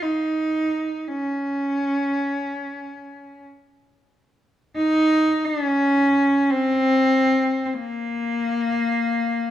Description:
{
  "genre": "caucasian folk",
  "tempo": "free time",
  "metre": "none",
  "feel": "none",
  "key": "Bb minor",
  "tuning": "A4 = 442 Hz",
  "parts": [
    { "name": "rich cello", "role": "solo", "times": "0.0-9.5 s", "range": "Bb3 to Eb4", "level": "-20 LUFS", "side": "equal", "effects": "none" }
  ],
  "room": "moderate large studio reverb, RT60 1.5 s",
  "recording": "band playing live in one room",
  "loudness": "-19 LUFS",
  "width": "side -11 dB against mid",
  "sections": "0.0-9.5 A section",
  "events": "none",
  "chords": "none",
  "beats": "free time"
}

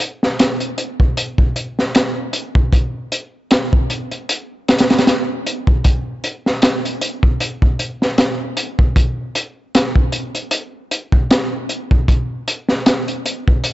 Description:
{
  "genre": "trip hop",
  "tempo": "77 BPM",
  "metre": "4/4",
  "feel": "swing 56% on 16ths",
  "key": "none",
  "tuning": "none",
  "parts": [
    { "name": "crunchy breakbeat drum kit", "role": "drums", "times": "0.0-13.7 s", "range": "hi-hat, kick drum, snare drum", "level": "-14 LUFS", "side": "equal", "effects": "none" }
  ],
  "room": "light reverb",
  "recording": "dark, warm production, nothing above 7.9 kHz",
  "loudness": "-15 LUFS",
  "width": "side -16 dB against mid",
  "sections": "0.0-13.7 A section",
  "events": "none",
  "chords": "none",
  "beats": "0.39 1.17 1.95 | 2.73 3.51 4.29 5.07 | 5.84 6.62 7.40 8.18 | 8.96 9.74 10.52 11.30 | 12.08 12.86 13.64"
}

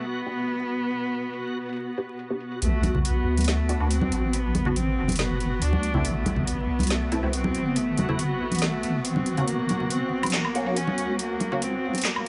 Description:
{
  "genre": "deep dubstep",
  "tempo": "140 BPM",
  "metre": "4/4",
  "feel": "half-time",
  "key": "B phrygian",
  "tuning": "A4 = 437 Hz",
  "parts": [
    { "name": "rich cello", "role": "melody", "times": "0.0-12.3 s", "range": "A3 to D4", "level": "-32 LUFS", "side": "equal", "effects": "vintage 12-bit sampler grit, dub echo" },
    { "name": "granular cloud pad", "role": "sustained chords", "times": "0.0-12.3 s", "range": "B3", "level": "-36 LUFS", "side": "equal", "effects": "built-in reverb" },
    { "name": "garage drum kit", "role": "drums", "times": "0.0-12.2 s", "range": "handclaps, hi-hat, snare drum, woodblock", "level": "-32 LUFS", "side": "equal", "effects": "overdrive, high-pass filter on hats, low-pass filter on hats, high-pass filter on snare, low-pass filter on snare, high-pass filter on perc, low-pass filter on perc" },
    { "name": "backwards swelling texture", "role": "texture", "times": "0.0-12.3 s", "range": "F#4", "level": "-37 LUFS", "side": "equal", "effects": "built-in reverb" },
    { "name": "filtered dub chord stab", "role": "stabs", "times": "0.3-11.6 s", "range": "A3 to G4", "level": "-35 LUFS", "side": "equal", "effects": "phaser, ensemble chorus, dub echo" },
    { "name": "deep soft wobble bass", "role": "bass", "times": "2.6-12.3 s", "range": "F#1 to D2", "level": "-29 LUFS", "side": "equal", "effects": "chorus" },
    { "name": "congas", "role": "percussion", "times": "2.8-12.0 s", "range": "none", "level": "-32 LUFS", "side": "equal", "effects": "none" }
  ],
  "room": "light reverb",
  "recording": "vinyl crackle, high-pass filter, nothing above 11.0 kHz",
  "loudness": "-26 LUFS",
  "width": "mono",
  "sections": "0.0-2.6 A section; 2.6-12.3 B section",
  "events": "build-up 2.6-12.3; filter sweep 2.6-12.3",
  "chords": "0.0 G; 2.6 Bm; 6.0 Am; 9.5 F#",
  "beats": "0.05 0.48 | 0.91 1.33 1.76 2.19 | 2.62 3.05 3.48 3.91 | 4.33 4.76 5.19 5.62 | 6.05 6.48 6.91 7.33 | 7.76 8.19 8.62 9.05 | 9.48 9.91 10.33 10.76 | 11.19 11.62 12.05"
}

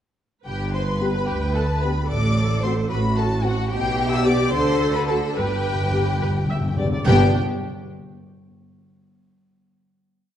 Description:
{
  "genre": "quick classical-period movement for symphony orchestra",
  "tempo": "72 BPM (dotted quarters)",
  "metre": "6/8",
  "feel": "straight",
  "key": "G major",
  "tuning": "A4 = 438 Hz",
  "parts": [
    { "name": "clear chamber violin section", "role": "second line", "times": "0.4-7.4 s", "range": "F#4 to E5", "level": "-29 LUFS", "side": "left 3 dB", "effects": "none" },
    { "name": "rich chamber violin section", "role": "melody", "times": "0.5-7.4 s", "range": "F#5 to E6", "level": "-28 LUFS", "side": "left 4 dB", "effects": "none" },
    { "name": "rich symphonic viola section", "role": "accompaniment", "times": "0.5-7.4 s", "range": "B3 to E5", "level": "-27 LUFS", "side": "right 1 dB", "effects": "none" },
    { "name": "rich chamber cello section", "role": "bass", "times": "0.5-7.4 s", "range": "D2 to D3", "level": "-25 LUFS", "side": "right 1 dB", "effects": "none" },
    { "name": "rich chamber double bass section", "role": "bass", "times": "0.5-7.4 s", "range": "G1 to D2", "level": "-25 LUFS", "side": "right 2 dB", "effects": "none" },
    { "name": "dark French horn section", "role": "sustained chords", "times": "1.0-7.3 s", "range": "A3 to G4", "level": "-28 LUFS", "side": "left 2 dB", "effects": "none" },
    { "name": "timpani", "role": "percussion", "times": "5.4-7.3 s", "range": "G2", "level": "-26 LUFS", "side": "left 1 dB", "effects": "none" }
  ],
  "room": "wet recital hall reverb, RT60 1.5 s",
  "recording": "dark, warm production",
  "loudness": "-19 LUFS",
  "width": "side -10 dB against mid",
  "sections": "0.5-7.1 A section; 7.1-8.8 final chord",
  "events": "timpani fill 5.4-7.1",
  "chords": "0.5 G; 2.1 D7/A; 3.7 G/B; 4.5 D7(no3); 5.4 G",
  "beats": "| 0.46 1.28 | 2.10 2.91 | 3.72 4.54 | 5.37 6.22 | 7.07"
}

